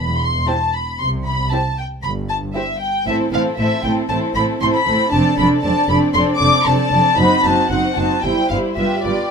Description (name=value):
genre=quick classical-period movement for string orchestra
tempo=116 BPM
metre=4/4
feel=rubato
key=C major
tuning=A4 = 440 Hz
part: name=warm studio violin section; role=melody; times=0.0-9.3 s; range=D5 to D6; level=-18 LUFS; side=left 2 dB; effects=none
part: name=dark studio cello section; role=bass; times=0.0-9.1 s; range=E2 to C3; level=-24 LUFS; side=right 1 dB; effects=none
part: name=rich studio double bass section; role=bass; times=0.0-9.1 s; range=E1 to C2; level=-24 LUFS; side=right 1 dB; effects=none
part: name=warm chamber violin section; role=second line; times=0.5-9.3 s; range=E4 to D5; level=-22 LUFS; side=left 3 dB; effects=none
part: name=warm chamber viola section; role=accompaniment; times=0.5-9.3 s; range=G3 to F4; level=-20 LUFS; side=right 3 dB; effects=none
room=moderate large studio reverb, RT60 0.9 s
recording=minimal, uncompressed stereo recording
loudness=-15 LUFS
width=side -6 dB against mid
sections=0.0-9.3 A section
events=none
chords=0.0 C/E; 1.0 C5; 3.1 Am; 5.1 Dm7/F; 7.2 F#dim7; 8.2 C/G; 8.8 G7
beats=0.48 | 1.00 1.52 2.04 2.55 | 3.07 3.58 4.10 4.62 | 5.13 5.64 6.15 6.66 | 7.19 7.71 8.24 8.77